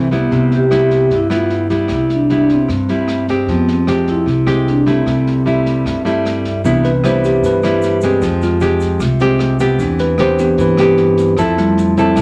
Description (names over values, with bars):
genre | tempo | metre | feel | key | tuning
bossa nova | 152 BPM | 4/4 | straight | C major | A4 = 440 Hz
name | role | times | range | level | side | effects
vibraphone with soft mallets | melody | 0.0-6.4 s | B3 to G4 | -18 LUFS | equal | none
nylon-string guitar | accompaniment | 0.0-12.2 s | G2 to A4 | -18 LUFS | equal | none
upright bass | bass | 0.0-12.2 s | C2 to G2 | -26 LUFS | equal | none
open jazz drum kit | drums | 0.1-12.2 s | kick drum, rim click, snare drum | -30 LUFS | equal | none
bell-like tine electric piano | accompaniment | 6.6-12.2 s | E3 to C5 | -18 LUFS | equal | none
egg shaker | percussion | 6.6-12.2 s | none | -46 LUFS | equal | none
room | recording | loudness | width
wet studio reverb, RT60 0.5 s | none | -14 LUFS | mono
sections
0.0-6.6 A section; 6.6-12.2 B section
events
tine electric piano solo 6.6-12.2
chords
0.3 Cmaj7; 3.5 Fmadd9; 5.1 C6; 6.6 Cmaj7; 8.2 Fmadd9; 9.8 Cmaj7/E; 11.4 Fmaj7